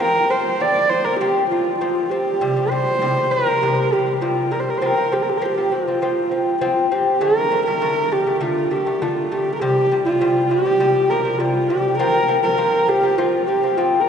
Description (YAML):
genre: mongolian traditional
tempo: 100 BPM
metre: 4/4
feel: straight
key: F zhi mode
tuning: A4 = 439 Hz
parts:
  - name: dark horsehead fiddle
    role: melody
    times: 0.0-14.1 s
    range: F4 to D5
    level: -18 LUFS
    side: right 1 dB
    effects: none
  - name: lute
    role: arpeggios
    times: 0.0-14.0 s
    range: C3 to C4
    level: -21 LUFS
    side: left 3 dB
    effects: none
room: wet cathedral reverb, RT60 4.6 s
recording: recorded in a church or concert hall, nothing above 10.6 kHz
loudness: -16 LUFS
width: side -7 dB against mid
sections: 0.0-7.2 A section; 7.2-14.1 B section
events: none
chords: 0.0 F5; 2.4 C5; 4.8 F5; 7.2 D5; 9.6 C5; 12.0 F5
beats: 0.60 1.20 1.81 | 2.41 3.02 3.62 4.22 | 4.82 5.42 6.02 6.62 | 7.22 7.82 8.42 9.01 | 9.61 10.21 10.80 11.40 | 11.99 12.59 13.18 13.77